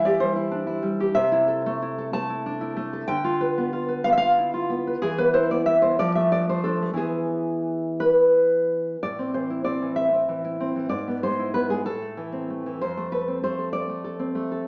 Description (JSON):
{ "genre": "romantic piece for solo classical guitar", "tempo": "58-65 BPM (dotted quarters)", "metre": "6/8", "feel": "rubato", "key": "A minor", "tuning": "A4 = 440 Hz", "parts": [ { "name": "nylon-string guitar", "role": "solo", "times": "0.0-14.7 s", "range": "F2 to A5", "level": "-24 LUFS", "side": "equal", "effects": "slapback echo" } ], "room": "moderate recital hall reverb, RT60 1.6 s", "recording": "worn, warbling old tape, cassette tape, warbly pitch drift, small speaker sound", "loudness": "-24 LUFS", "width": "mono", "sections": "0.0-9.0 A section; 9.0-14.7 B section", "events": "none", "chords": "0.0 C/E; 1.2 Am/C; 3.1 Bdim/D; 5.0 E5; 6.0 Dm/F; 7.0 E; 9.0 Am; 10.9 E/G#; 11.9 Am; 12.8 F" }